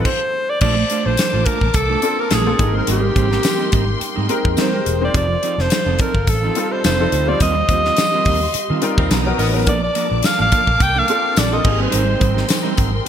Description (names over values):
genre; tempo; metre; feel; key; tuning
polished 1980s jazz-funk pop; 106 BPM; 4/4; swing 54% on 16ths; Bb major; A4 = 440 Hz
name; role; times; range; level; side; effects
breathy alto saxophone; melody; 0.0-12.6 s; G4 to G5; -20 LUFS; equal; none
warm baby grand piano; accompaniment; 0.0-13.1 s; G3 to C5; -24 LUFS; left 2 dB; analog chorus
dark studio string section; sustained chords; 0.0-13.1 s; Bb3 to D#6; -28 LUFS; left 2 dB; none
mellow electric guitar; riff; 0.0-13.1 s; F3 to C5; -24 LUFS; right 7 dB; analog chorus
modern studio drum kit; drums; 0.0-13.1 s; crash cymbal, hi-hat, kick drum, snare drum; -20 LUFS; equal; gated reverb
vintage muted fingered electric bass; bass; 0.6-13.0 s; E1 to Eb3; -21 LUFS; equal; none
tambourine; percussion; 1.2-12.6 s; none; -32 LUFS; left 10 dB; none
warm horn section; second line; 9.0-9.6 s; B3 to F5; -30 LUFS; right 1 dB; digital delay
room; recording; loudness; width
moderate lush hall reverb, RT60 2.5 s; bright 1980s-style digital production; -14 LUFS; side -9 dB against mid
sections
0.6-13.1 A section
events
stop 0.1-0.6; band accent 7.4-9.7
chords
0.0 F7(no3); 0.6 Bbmaj7; 2.6 Abmaj9; 5.1 F7; 7.4 Eb69; 9.1 Bmaj7; 9.7 Bbmaj7; 11.7 Abmaj9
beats
0.05 | 0.62 1.18 1.75 2.32 | 2.88 3.45 4.01 4.58 | 5.15 5.71 6.28 6.84 | 7.41 7.97 8.54 9.11 | 9.67 10.24 10.80 11.37 | 11.93 12.50 13.06